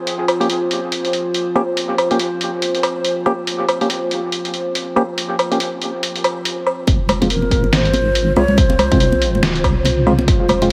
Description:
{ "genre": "deep dubstep", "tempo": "141 BPM", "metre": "4/4", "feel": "swing 59% on 16ths, half-time", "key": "F minor", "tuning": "A4 = 443 Hz", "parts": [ { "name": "dark analog pad", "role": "sustained chords", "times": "0.0-10.7 s", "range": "F4 to C5", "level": "-25 LUFS", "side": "equal", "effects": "chorus" }, { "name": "trip hop sampler-style drum kit", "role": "drums", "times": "0.1-10.7 s", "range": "hi-hat, snare drum, woodblock", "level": "-23 LUFS", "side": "equal", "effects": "small room ambience" }, { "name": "percussive organ stab", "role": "stabs", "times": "0.4-10.7 s", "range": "Ab3 to G4", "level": "-24 LUFS", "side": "equal", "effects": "chorus, dub echo" }, { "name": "deep soft wobble bass", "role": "bass", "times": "6.9-10.7 s", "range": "F1 to C2", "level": "-22 LUFS", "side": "equal", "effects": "chorus" }, { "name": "electronic kick drum", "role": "drums", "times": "6.9-10.4 s", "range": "none", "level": "-18 LUFS", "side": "equal", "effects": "small room ambience" }, { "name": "congas", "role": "percussion", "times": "6.9-10.7 s", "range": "none", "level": "-25 LUFS", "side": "equal", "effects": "none" }, { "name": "breathy mellow ney", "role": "melody", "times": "7.3-9.9 s", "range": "Bb4 to Db5", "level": "-23 LUFS", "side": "equal", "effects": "dub echo" } ], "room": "light reverb", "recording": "vinyl crackle", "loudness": "-17 LUFS", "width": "mono", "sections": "0.0-6.9 A section; 6.9-10.7 B section", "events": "build-up 6.9-10.7; filter sweep on synth stab 6.9-10.7", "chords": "0.1 Gdim; 6.9 Fm" }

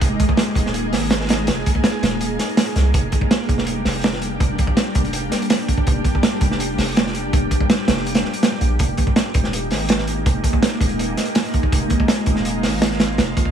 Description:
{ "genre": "drum and bass, jungle", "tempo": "164 BPM", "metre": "4/4", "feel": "straight", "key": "F dorian", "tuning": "A4 = 442 Hz", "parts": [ { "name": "ethereal airy pad", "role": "sustained chords", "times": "0.0-13.5 s", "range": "G3 to Ab4", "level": "-22 LUFS", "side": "equal", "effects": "ensemble chorus, built-in reverb, vintage 12-bit sampler grit" }, { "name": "long sustained 808-style bass", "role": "bass", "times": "0.0-13.3 s", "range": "Eb1 to C2", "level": "-23 LUFS", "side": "right 1 dB", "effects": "none" }, { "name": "crunchy breakbeat drum kit", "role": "drums", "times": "0.0-13.5 s", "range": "hi-hat, kick drum, snare drum", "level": "-18 LUFS", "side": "right 1 dB", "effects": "none" } ], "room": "light reverb, small room ambience", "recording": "none", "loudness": "-16 LUFS", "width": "side -8 dB against mid", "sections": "0.0-13.5 A section", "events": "none", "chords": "0.0 Fm11 (rootless); 2.9 Gm/F; 8.8 Fm11" }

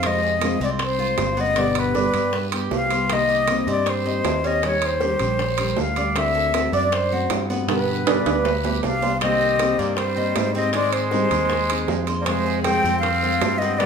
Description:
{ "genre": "latin, Cuban son and guajira", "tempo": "157 BPM", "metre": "4/4", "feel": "straight", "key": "C minor", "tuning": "A4 = 440 Hz", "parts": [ { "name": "breathy concert flute", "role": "melody", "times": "0.0-13.9 s", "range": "B4 to G5", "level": "-22 LUFS", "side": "left 2 dB", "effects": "none" }, { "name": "nylon-string guitar", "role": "accompaniment", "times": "0.0-13.9 s", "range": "B2 to Ab4", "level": "-27 LUFS", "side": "left 2 dB", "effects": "none" }, { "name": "Cuban tres", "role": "arpeggios", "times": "0.0-13.9 s", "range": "B3 to D5", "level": "-29 LUFS", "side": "right 3 dB", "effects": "none" }, { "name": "picked electric bass", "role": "bass", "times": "0.0-13.9 s", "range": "G1 to Ab2", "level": "-27 LUFS", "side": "equal", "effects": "none" }, { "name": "bongos", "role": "percussion", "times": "0.0-13.9 s", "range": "none", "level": "-32 LUFS", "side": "left 1 dB", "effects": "none" }, { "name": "guiro", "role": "percussion", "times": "0.0-13.9 s", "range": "none", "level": "-38 LUFS", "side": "right 7 dB", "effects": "none" }, { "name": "timbales", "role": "percussion", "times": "0.0-13.9 s", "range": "none", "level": "-27 LUFS", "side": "right 7 dB", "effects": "none" }, { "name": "growling trumpet", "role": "second line", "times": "8.8-13.9 s", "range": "G3 to D4", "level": "-28 LUFS", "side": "right 5 dB", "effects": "none" } ], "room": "wet large studio reverb, RT60 0.9 s", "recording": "band playing live in one room", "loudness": "-18 LUFS", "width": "side -6 dB against mid", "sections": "0.0-9.2 A section; 9.2-13.9 A section", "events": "drum fill 7.7-9.2", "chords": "0.0 Fm; 1.6 G; 3.1 Cm7; 4.6 Eb7; 6.2 D7; 7.7 G; 9.2 Cm7; 10.7 Abmaj7; 12.3 Fm" }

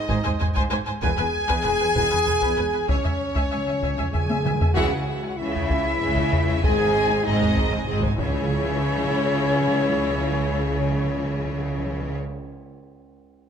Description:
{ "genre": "cinematic, epic orchestral film score", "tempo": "96 BPM", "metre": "3/4", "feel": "straight", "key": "C# minor", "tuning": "A4 = 443 Hz", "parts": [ { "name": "rich symphonic violin section", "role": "melody", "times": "0.0-12.1 s", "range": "C#5 to G#5", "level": "-32 LUFS", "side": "left 3 dB", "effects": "none" }, { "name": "rich symphonic violin section", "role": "second line", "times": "0.0-12.1 s", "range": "B#4 to G#5", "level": "-33 LUFS", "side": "left 2 dB", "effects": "none" }, { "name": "mellow French horn section", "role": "sustained chords", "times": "0.0-12.2 s", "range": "C#4 to G#4", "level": "-26 LUFS", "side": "left 2 dB", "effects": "none" }, { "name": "clear trumpet section", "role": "stabs", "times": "0.0-4.4 s", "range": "C#5 to G#5", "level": "-29 LUFS", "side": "right 1 dB", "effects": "none" }, { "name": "timpani", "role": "percussion", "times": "0.0-0.1, 2.9-12.1 s", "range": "G#2 to C#3", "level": "-31 LUFS", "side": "right 2 dB", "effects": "none" }, { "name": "rich symphonic viola section", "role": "accompaniment", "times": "0.1-12.1 s", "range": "E3 to G#5", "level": "-30 LUFS", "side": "equal", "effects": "none" }, { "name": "rich symphonic cello section", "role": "bass", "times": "0.1-12.2 s", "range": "C#2 to C#3", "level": "-30 LUFS", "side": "right 2 dB", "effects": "none" }, { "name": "rich symphonic double bass section", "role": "bass", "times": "0.1-12.1 s", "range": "E1 to C#2", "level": "-29 LUFS", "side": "right 2 dB", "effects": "none" }, { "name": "taiko ensemble", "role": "drums", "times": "0.1-9.4 s", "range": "none", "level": "-25 LUFS", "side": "equal", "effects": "none" }, { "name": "silver concert flute", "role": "second line", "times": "4.1-12.2 s", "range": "C#5 to G#5", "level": "-31 LUFS", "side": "left 2 dB", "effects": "none" } ], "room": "light reverb", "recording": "close, detailed microphones", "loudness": "-20 LUFS", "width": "side -8 dB against mid", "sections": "0.0-4.8 A section; 4.8-8.5 B section; 8.5-12.2 C section", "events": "timpani fill 2.9-4.8, 6.6-8.5; drum fill 4.3-4.8; band accent 4.8-5.4", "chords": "0.0 G#; 1.0 E; 2.9 C#m; 6.6 G#; 8.2 C#m" }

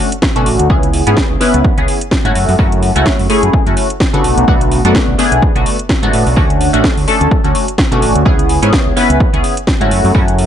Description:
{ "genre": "filtered disco house", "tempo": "127 BPM", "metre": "4/4", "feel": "swing 56% on 16ths", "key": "F# minor", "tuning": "A4 = 439 Hz", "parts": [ { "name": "funky polysynth comp", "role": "accompaniment", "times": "0.0-10.5 s", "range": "A3 to B4", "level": "-14 LUFS", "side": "left 1 dB", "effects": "chorus, phaser, sidechain pumping, low-pass filter" }, { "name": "house drum kit", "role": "drums", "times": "0.1-10.5 s", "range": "hi-hat, snare drum", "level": "-18 LUFS", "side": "equal", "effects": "overdrive, sidechain pumping on hats" }, { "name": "electronic kick drum", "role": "drums", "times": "0.2-10.3 s", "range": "none", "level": "-14 LUFS", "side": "equal", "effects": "overdrive" }, { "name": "growling fingered electric bass", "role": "bass", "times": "0.4-10.5 s", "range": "A1 to C#3", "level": "-15 LUFS", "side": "equal", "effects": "overdrive, sidechain pumping, low-pass filter" } ], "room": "little or no reverb", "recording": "nothing above 10.6 kHz", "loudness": "-10 LUFS", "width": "side -9 dB against mid", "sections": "0.0-10.5 A section", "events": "none", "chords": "0.0 Dmaj7; 0.7 C#m7; 2.4 F#m7; 4.2 Bm7; 6.4 Dmaj7; 8.3 C#m7; 9.9 F#m7" }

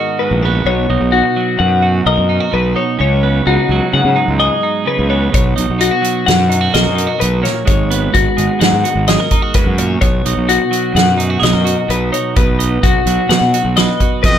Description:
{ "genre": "math rock and midwest emo", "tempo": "128 BPM", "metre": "5/4", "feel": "straight", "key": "B major", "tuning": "A4 = 437 Hz", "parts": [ { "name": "twelve-string electric guitar", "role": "accompaniment", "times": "0.0-14.4 s", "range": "G#2 to B4", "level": "-18 LUFS", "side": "right 8 dB", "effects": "none" }, { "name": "twelve-string electric guitar", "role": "arpeggios", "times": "0.0-14.4 s", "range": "F#4 to F#5", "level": "-16 LUFS", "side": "left 7 dB", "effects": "wide subtle chorus" }, { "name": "fuzz fingered electric bass", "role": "bass", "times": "0.3-14.4 s", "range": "G#1 to C#3", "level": "-16 LUFS", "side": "equal", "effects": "overdrive" }, { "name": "loose indie drum kit", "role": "drums", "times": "5.3-14.3 s", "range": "hi-hat, kick drum, snare drum", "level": "-15 LUFS", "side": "right 1 dB", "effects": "none" }, { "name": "brilliant trumpet", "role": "melody", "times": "14.3-14.4 s", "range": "D#5", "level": "-13 LUFS", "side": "left 2 dB", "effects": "none" } ], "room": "light reverb", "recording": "none", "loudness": "-11 LUFS", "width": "side -9 dB against mid", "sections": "0.0-14.4 A section", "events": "none", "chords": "0.0 G#m11; 0.7 Bmaj9; 3.0 C#9sus4; 5.3 Bmaj9; 7.7 G#m11; 10.0 Bmaj9; 12.4 B" }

